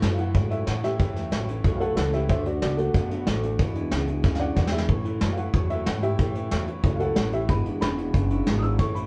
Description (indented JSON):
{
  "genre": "rockabilly",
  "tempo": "185 BPM",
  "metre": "4/4",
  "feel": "straight",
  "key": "A major",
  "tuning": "A4 = 440 Hz",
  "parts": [
    { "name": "picked steel-string acoustic guitar", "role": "accompaniment", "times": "0.0-9.1 s", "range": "E2 to F#4", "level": "-35 LUFS", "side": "equal", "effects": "none" },
    { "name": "electric guitar through a small old amp", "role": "riff", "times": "0.0-9.1 s", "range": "E2 to B3", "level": "-36 LUFS", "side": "equal", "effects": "none" },
    { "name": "upright bass", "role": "bass", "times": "0.0-9.1 s", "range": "E1 to A2", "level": "-30 LUFS", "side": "equal", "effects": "none" },
    { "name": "soft brush drum kit", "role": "drums", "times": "0.0-9.0 s", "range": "hi-hat, kick drum, snare drum", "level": "-28 LUFS", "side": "equal", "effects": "none" },
    { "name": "warm upright piano", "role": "melody", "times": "0.1-9.1 s", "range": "A3 to E6", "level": "-32 LUFS", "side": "equal", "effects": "none" }
  ],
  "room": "moderate studio reverb, RT60 0.8 s",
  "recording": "band playing live in one room, cassette tape",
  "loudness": "-25 LUFS",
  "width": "mono",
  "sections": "0.0-9.1 A section",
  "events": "drum fill 4.2-4.9",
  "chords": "0.0 A; 2.3 D; 3.6 E7; 4.9 A; 7.5 E7",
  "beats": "0.03 0.35 0.68 | 1.00 1.32 1.65 1.97 | 2.30 2.62 2.94 3.27 | 3.59 3.92 4.24 4.57 | 4.89 5.22 5.54 5.87 | 6.19 6.52 6.84 7.17 | 7.49 7.82 8.14 8.47 | 8.79"
}